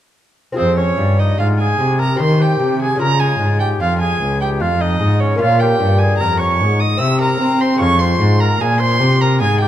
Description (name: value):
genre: classical, baroque-style sonata movement with continuo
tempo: 75 BPM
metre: 3/4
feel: straight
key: F minor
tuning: A4 = 440 Hz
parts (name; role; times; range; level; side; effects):
- lute; accompaniment; 0.5-9.7 s; F2 to Ab4; -22 LUFS; left 2 dB; none
- warm oboe; melody; 0.6-9.7 s; C4 to E5; -22 LUFS; left 6 dB; none
- rich violin; second line; 0.6-9.7 s; C5 to E6; -19 LUFS; right 4 dB; none
- warm cello; bass; 0.6-9.7 s; Db2 to C4; -16 LUFS; equal; none
room: moderate recital hall reverb, RT60 1.4 s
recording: dark, warm production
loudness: -13 LUFS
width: side -11 dB against mid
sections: 0.6-9.7 A section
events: none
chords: 0.6 Fm; 2.2 Cm/Eb; 3.0 Db; 5.4 Bbm; 7.0 C7; 7.8 Fm